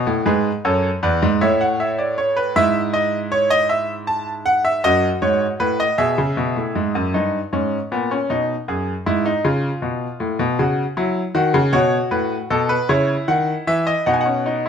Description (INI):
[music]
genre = classical, baroque-style 3-part fugue for grand piano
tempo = 52 BPM (dotted quarters)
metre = 6/8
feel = straight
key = unclear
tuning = A4 = 440 Hz
[part]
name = bright concert grand piano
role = solo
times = 0.0-14.7 s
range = E2 to A5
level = -17 LUFS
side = equal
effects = none
[sound]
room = moderate stone room reverb, RT60 1.1 s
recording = none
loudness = -17 LUFS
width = side -7 dB against mid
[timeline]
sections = 0.0-7.1 A section; 7.1-14.7 B section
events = none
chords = 0.3 E; 1.4 A; 2.6 E/G#; 3.7 F#m7; 4.8 B/F#; 6.0 E/B; 7.1 D#7/G; 8.3 G#m; 9.4 C#7; 10.6 F#5/C#; 11.7 B5; 12.9 C#m; 14.1 B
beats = | 0.26 1.41 | 2.56 3.69 | 4.83 5.98 | 7.14 8.30 | 9.44 10.58 | 11.73 12.89 | 14.06